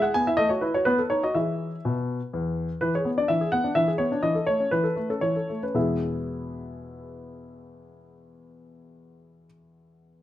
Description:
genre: classical-period piano sonatina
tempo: 112-129 BPM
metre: 3/4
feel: rubato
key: E major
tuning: A4 = 441 Hz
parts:
  - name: warm grand piano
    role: solo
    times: 0.0-10.2 s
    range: E2 to G#5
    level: -23 LUFS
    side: left 1 dB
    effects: none
room: moderate large studio reverb, RT60 1.4 s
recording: close, detailed microphones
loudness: -23 LUFS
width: side -13 dB against mid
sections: 0.0-2.8 A section; 2.8-5.8 B section; 5.8-8.9 C section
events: slowing down 2.1-5.8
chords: 0.4 F#m7/A; 0.9 B7; 1.4 E; 2.8 E7; 4.2 A/E; 5.8 E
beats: 0.38 0.86 | 1.35 1.84 2.33 | 2.82 3.29 3.76 | 4.24 4.72 5.23 | 5.76 6.28 6.79 | 7.31 7.83 8.36

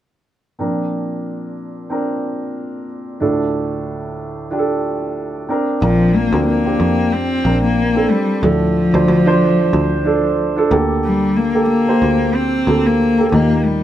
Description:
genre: pop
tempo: 92 BPM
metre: 4/4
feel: swing 56% on 16ths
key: Bb major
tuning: A4 = 440 Hz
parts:
  - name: dark upright piano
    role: accompaniment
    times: 0.6-13.8 s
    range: D2 to C5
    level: -18 LUFS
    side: right 3 dB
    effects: none
  - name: dark cello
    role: melody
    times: 5.8-13.8 s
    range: F3 to C4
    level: -16 LUFS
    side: left 2 dB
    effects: none
  - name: picked electric bass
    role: bass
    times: 5.8-13.8 s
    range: Bb1 to F2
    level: -19 LUFS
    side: equal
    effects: none
room: moderate studio reverb, RT60 0.6 s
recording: band playing live in one room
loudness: -14 LUFS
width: side -12 dB against mid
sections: 0.6-5.8 A section; 5.8-13.8 B section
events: none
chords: 0.6 Bbadd9; 3.2 Dm; 5.5 Bbadd9; 8.4 Dm; 10.7 Gmadd9; 13.3 Eb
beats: | 0.60 1.25 1.90 2.56 | 3.21 3.86 4.51 5.17 | 5.82 6.47 7.12 7.78 | 8.43 9.08 9.73 10.39 | 11.04 11.69 12.35 13.00 | 13.65

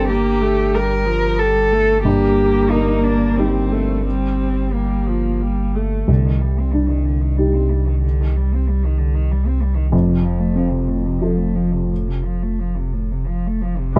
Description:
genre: neoclassical piano and strings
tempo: 86-96 BPM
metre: 3/4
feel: rubato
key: C dorian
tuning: A4 = 441 Hz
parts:
  - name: muted cello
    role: second line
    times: 0.0-14.0 s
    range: A2 to Bb4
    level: -24 LUFS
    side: equal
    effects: slapback echo
  - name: dark upright piano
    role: accompaniment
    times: 0.0-14.0 s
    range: C2 to A4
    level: -23 LUFS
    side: equal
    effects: none
  - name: muted viola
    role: accompaniment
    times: 0.0-6.1, 14.0 s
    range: F3 to C4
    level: -25 LUFS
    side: equal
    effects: none
  - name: punchy sub bass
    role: bass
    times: 0.0-14.0 s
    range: F1 to C2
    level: -22 LUFS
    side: equal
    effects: none
room: little or no reverb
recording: dark, warm production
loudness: -18 LUFS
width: mono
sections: 0.0-6.1 A section; 6.1-14.0 B section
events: none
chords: 0.0 Gmadd9; 2.1 Eb/G; 6.1 Cmadd9; 9.9 F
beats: | 0.09 0.74 1.40 | 2.05 2.71 3.37 | 4.05 4.73 5.41 | 6.08 6.74 7.39 | 8.03 8.67 9.29 | 9.93 10.57 11.22 | 11.90 12.60 13.29 | 13.96

